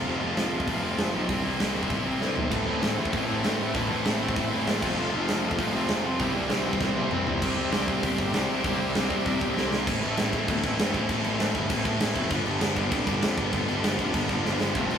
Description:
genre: punk rock.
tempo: 196 BPM.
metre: 4/4.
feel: straight.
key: A minor.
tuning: A4 = 439 Hz.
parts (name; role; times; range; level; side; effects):
distorted electric guitar; riff; 0.0-15.0 s; F2 to G4; -30 LUFS; left 6 dB; overdrive.
tight distorted guitar; riff; 0.0-15.0 s; F2 to C4; -31 LUFS; right 6 dB; distortion.
fuzz picked electric bass; bass; 0.0-15.0 s; F1 to C3; -31 LUFS; equal; overdrive.
big rock drum kit; drums; 0.4-15.0 s; crash cymbal, hi-hat, kick drum, snare drum, toms; -28 LUFS; equal; none.
crunchy overdriven guitar; riff; 2.5-9.9, 14.8-15.0 s; F2 to G4; -31 LUFS; equal; none.
room: moderate studio reverb, RT60 0.6 s.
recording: rough rehearsal-room recording, tube saturation.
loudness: -24 LUFS.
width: side -8 dB against mid.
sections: 0.0-7.4 A section; 7.4-9.9 B section; 9.9-15.0 C section.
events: drum fill 2.2-2.5, 6.8-7.4, 9.6-9.9, 14.4-14.7.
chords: 0.0 F; 1.3 C; 2.5 Am; 4.8 F; 6.2 C; 9.9 Am; 12.3 G.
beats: | 0.07 0.37 0.68 0.99 | 1.29 1.60 1.91 2.21 | 2.52 2.83 3.14 3.44 | 3.75 4.06 4.36 4.67 | 4.98 5.28 5.59 5.90 | 6.20 6.51 6.82 7.12 | 7.43 7.73 8.04 8.34 | 8.65 8.96 9.26 9.57 | 9.87 10.18 10.48 10.79 | 11.09 11.40 11.70 12.01 | 12.31 12.62 12.92 13.22 | 13.53 13.84 14.14 14.44 | 14.75.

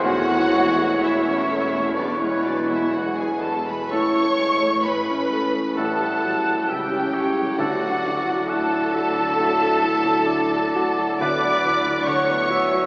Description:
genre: classical, romantic movement for piano and orchestra.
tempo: 60-71 BPM.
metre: 4/4.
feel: rubato.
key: A major.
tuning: A4 = 440 Hz.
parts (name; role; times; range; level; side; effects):
warm concert grand piano; melody; 0.0-12.9 s; D2 to A4; -24 LUFS; equal; none.
warm symphonic violin section; melody; 0.0-12.9 s; C#5 to D6; -27 LUFS; equal; none.
clear oboe; second line; 0.0-12.9 s; B4 to F#5; -27 LUFS; equal; none.
small flute group; second line; 0.0-12.9 s; C#5 to D6; -28 LUFS; equal; none.
warm symphonic violin section; second line; 0.0-12.9 s; C#4 to D5; -29 LUFS; equal; none.
warm symphonic viola section; accompaniment; 0.0-12.9 s; C#4 to D5; -28 LUFS; equal; none.
clear trombone section; sustained chords; 0.0-11.5 s; D3 to A3; -34 LUFS; equal; none.
mellow French horn section; sustained chords; 0.0-11.5 s; A3 to F#4; -29 LUFS; equal; none.
clear trumpet; stabs; 0.0-11.5 s; A4 to C#5; -32 LUFS; equal; none.
rich symphonic cello section; bass; 0.0-12.9 s; E2 to D3; -32 LUFS; equal; none.
rich symphonic double bass section; bass; 0.0-12.9 s; E1 to D2; -36 LUFS; equal; none.
timpani; percussion; 0.0-1.4 s; E2; -42 LUFS; equal; none.
room: wet cathedral reverb, RT60 4.0 s.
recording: recorded in a church or concert hall, AM radio sound.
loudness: -18 LUFS.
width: side -27 dB against mid.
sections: 0.0-12.9 A section.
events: none.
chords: 0.0 A/E; 2.0 E; 3.9 A; 5.8 A7; 7.6 D; 11.2 Bm/D.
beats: | 0.02 1.00 1.95 2.92 | 3.90 4.84 5.76 6.67 | 7.57 8.48 9.37 10.24 | 11.19 12.05.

